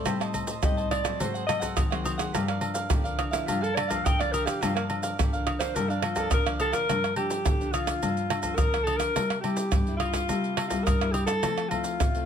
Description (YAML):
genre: samba and choro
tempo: 106 BPM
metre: 4/4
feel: straight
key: G minor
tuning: A4 = 440 Hz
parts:
  - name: cavaquinho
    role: accompaniment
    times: 0.0-6.9 s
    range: Gb4 to A5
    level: -34 LUFS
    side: right 3 dB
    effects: none
  - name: nylon-string guitar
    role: accompaniment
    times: 0.0-12.3 s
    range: G2 to E4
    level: -32 LUFS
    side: left 3 dB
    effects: none
  - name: agogo bells, tube shaker, surdo, pandeiro and tamborim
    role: percussion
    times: 0.1-12.3 s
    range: none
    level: -27 LUFS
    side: right 1 dB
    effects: none
  - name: breathy alto saxophone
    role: melody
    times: 0.6-12.3 s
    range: Bb3 to G5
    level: -29 LUFS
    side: equal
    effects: none
room: light reverb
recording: close, detailed microphones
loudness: -24 LUFS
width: side -8 dB against mid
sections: 0.0-6.9 A section; 6.9-12.3 B section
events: alto saxophone solo 0.0-6.9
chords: 0.1 Am7b5; 1.2 Ab9; 2.3 Gm7; 9.2 C7; 11.4 Fmaj7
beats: | 0.07 0.64 1.21 1.78 | 2.35 2.91 3.48 4.05 | 4.62 5.18 5.75 6.32 | 6.89 7.45 8.02 8.59 | 9.16 9.72 10.29 10.86 | 11.43 11.99